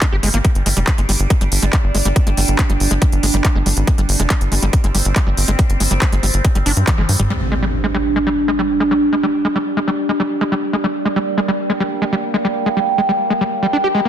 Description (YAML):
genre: psychedelic trance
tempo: 140 BPM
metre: 4/4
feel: straight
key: G phrygian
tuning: A4 = 439 Hz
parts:
  - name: overtone-sweeping drone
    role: sustained chords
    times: 0.0-14.1 s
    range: G3 to D4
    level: -20 LUFS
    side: right 2 dB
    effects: chorus, built-in reverb, phaser, sidechain pumping
  - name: screaming distorted acid line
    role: riff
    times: 0.0-14.1 s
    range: G3 to G4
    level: -21 LUFS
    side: equal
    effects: distortion, chorus, auto-pan, cassette tape, sidechain pumping, dub echo
  - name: electronic kick drum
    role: drums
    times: 0.0-7.0 s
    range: none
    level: -15 LUFS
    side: equal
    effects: distortion, overdrive, small room ambience
  - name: techno drum kit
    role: drums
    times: 0.0-7.3 s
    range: handclaps, hi-hat, toms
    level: -21 LUFS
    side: equal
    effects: small room ambience
  - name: tight sequencer bass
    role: bass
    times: 0.1-7.3 s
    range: F1 to G2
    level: -16 LUFS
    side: equal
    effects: none
  - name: impact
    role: sound effects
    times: 7.3-9.0 s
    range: none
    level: -24 LUFS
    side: equal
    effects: none
room: light reverb, digital ambience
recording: dense, heavily limited modern master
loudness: -14 LUFS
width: side -10 dB against mid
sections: 0.0-7.3 A section; 7.3-14.1 B section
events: drum fill 6.9-7.3; band accent 6.9; impact 7.3-9.0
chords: 0.0 G5